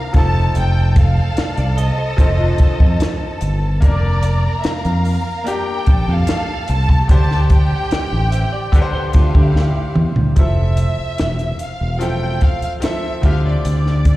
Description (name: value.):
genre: lush 1970s-style soul.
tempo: 73 BPM.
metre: 4/4.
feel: straight.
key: unclear.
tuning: A4 = 441 Hz.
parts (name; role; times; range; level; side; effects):
warm studio violin section; melody; 0.0-14.2 s; D5 to A5; -25 LUFS; equal; tape echo.
warm studio string section; second line; 0.0-10.3 s; G4 to Bb5; -27 LUFS; equal; slapback echo.
bright grand piano; accompaniment; 0.0-14.2 s; C3 to C5; -26 LUFS; left 2 dB; slapback echo.
fingered electric bass; bass; 0.1-14.1 s; E1 to D3; -16 LUFS; equal; none.
compact cocktail drum kit; drums; 0.1-14.2 s; hi-hat, kick drum, snare drum, toms; -15 LUFS; equal; none.
semi-hollow electric guitar; riff; 1.4-10.3 s; D4 to F5; -29 LUFS; right 3 dB; ensemble chorus, slapback echo.
room: little or no reverb.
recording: live gig heard through the venue's PA, recital hall reverb.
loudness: -14 LUFS.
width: side -17 dB against mid.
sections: 0.0-10.4 A section; 10.4-14.2 B section.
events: drum fill 9.6-10.4.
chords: 0.1 F7; 3.8 Bbmaj7/F; 7.1 D7sus4; 10.4 Fmaj7; 13.2 Dm11.